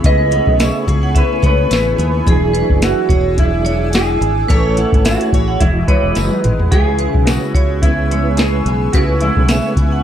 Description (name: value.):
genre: indie pop, bedroom pop.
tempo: 108 BPM.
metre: 4/4.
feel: swing 55% on 16ths.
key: unclear.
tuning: A4 = 444 Hz.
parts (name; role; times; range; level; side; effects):
electric guitar through a small old amp; melody; 0.0-10.0 s; E4 to D#5; -19 LUFS; right 1 dB; lush chorus, slapback echo.
mellow tonewheel organ; accompaniment; 0.0-9.8 s; F#3 to G#5; -24 LUFS; right 3 dB; chorus vibrato, fast rotary speaker, cassette tape.
picked steel-string acoustic guitar; accompaniment; 0.0-10.0 s; C#3 to C#5; -21 LUFS; left 2 dB; analog chorus, vibrato effect.
shimmering ambient pad; sustained chords; 0.0-10.0 s; A3 to E6; -28 LUFS; left 1 dB; chorus, built-in reverb.
fingered electric bass; bass; 0.0-10.0 s; E1 to D#2; -18 LUFS; equal; none.
soft vintage rhythm box; drums; 0.0-9.9 s; hi-hat, kick drum, snare drum, toms; -15 LUFS; equal; none.
vibraphone with hard mallets; second line; 0.1-10.0 s; G#4 to F#5; -24 LUFS; right 4 dB; wide subtle chorus, slapback echo.
tambourine; percussion; 0.6-9.6 s; none; -32 LUFS; left 7 dB; none.
room: light reverb, digital ambience.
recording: dark, warm production.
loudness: -12 LUFS.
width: side -10 dB against mid.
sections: 0.0-6.7 A section; 6.7-10.0 A section.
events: drum fill 6.2-6.7.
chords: 0.0 Amaj9; 2.3 E9; 4.5 Amaj9; 5.6 Emaj9; 6.7 C#m7; 8.9 Amaj9.